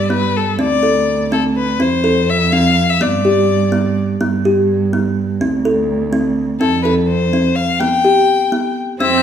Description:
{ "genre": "contemporary instrumental, chamber music in an uneven meter", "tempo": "249 BPM (eighths)", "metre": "5/8", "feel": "straight", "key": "G mixolydian", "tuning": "A4 = 440 Hz", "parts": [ { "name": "rich violin", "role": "melody", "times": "0.0-4.0, 6.6-9.2 s", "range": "A4 to G5", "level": "-17 LUFS", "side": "left 6 dB", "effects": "none" }, { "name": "dark cello", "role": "bass", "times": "0.0-9.2 s", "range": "D2 to G2", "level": "-18 LUFS", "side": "right 4 dB", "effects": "none" }, { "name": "kalimba", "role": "arpeggios", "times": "0.1-9.2 s", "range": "B3 to A4", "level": "-16 LUFS", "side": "equal", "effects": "none" }, { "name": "warm viola", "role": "second line", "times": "9.0-9.2 s", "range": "C4", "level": "-16 LUFS", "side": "right 5 dB", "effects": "none" }, { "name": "glockenspiel with brass mallets", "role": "texture", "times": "9.0-9.2 s", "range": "E6 to G6", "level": "-19 LUFS", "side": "left 7 dB", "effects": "none" } ], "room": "moderate scoring stage reverb, RT60 2.0 s", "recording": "minimal, uncompressed stereo recording", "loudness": "-13 LUFS", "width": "side -8 dB against mid", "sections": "0.0-9.0 A section", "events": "none", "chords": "0.0 G; 0.6 D5; 1.8 F; 3.0 G; 5.4 D5; 6.6 F; 7.8 G/B" }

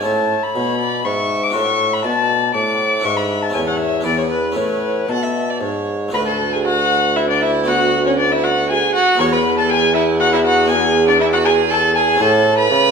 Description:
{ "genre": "classical, baroque-style sonata movement with continuo", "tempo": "119 BPM", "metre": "3/4", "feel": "straight", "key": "A major", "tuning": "A4 = 435 Hz", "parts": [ { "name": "dark violin", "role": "melody", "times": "0.0-12.9 s", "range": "A4 to D6", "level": "-18 LUFS", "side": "left 5 dB", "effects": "none" }, { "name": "rich violin", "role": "second line", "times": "0.0-12.9 s", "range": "C#4 to F#5", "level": "-20 LUFS", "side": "right 6 dB", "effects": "none" }, { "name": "harpsichord", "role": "accompaniment", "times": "0.0-12.9 s", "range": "D2 to B4", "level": "-26 LUFS", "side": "left 3 dB", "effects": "none" }, { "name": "mellow bassoon", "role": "bass", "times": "0.0-12.9 s", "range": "D2 to C#3", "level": "-19 LUFS", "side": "right 2 dB", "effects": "none" } ], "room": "wet recital hall reverb, RT60 1.6 s", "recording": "minimal, uncompressed stereo recording", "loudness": "-14 LUFS", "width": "side -6 dB against mid", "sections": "0.0-6.1 A section; 6.1-12.9 A section", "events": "none", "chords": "0.0 A; 1.5 Bm7/A; 3.0 E7/G#; 3.5 A/E; 4.1 E7; 4.6 A; 6.1 D; 7.7 Bm/D; 9.2 E; 10.7 E5; 12.2 A" }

